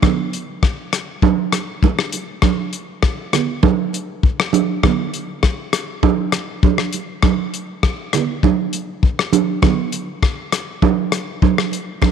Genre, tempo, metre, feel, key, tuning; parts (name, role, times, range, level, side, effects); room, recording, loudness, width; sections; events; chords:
highlife; 100 BPM; 4/4; straight
damped 70s drum kit; drums; 0.0-12.1 s; hi-hat, kick drum, rim click; -18 LUFS; left 4 dB
congas; percussion; 0.0-12.1 s; -18 LUFS; right 9 dB
moderate echo chamber reverb, RT60 2.2 s; 1960s-style stereo; -16 LUFS; side -7 dB against mid
0.0-12.1 A section